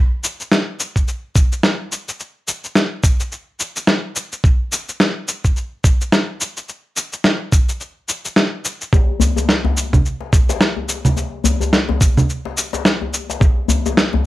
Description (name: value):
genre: downtempo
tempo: 107 BPM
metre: 4/4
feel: swing 58% on 16ths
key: none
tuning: none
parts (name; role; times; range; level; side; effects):
- electronic cabasa, snare drum and congas; drums; 0.2-14.1 s; none; -17 LUFS; equal; cassette tape
- electronic kick drum; drums; 1.0-13.5 s; none; -14 LUFS; equal; cassette tape
- djembe; percussion; 8.9-14.2 s; none; -20 LUFS; left 3 dB; none
room: moderate studio reverb, RT60 0.6 s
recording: home recording on cassette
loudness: -16 LUFS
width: side -16 dB against mid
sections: 0.0-14.3 A section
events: none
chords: none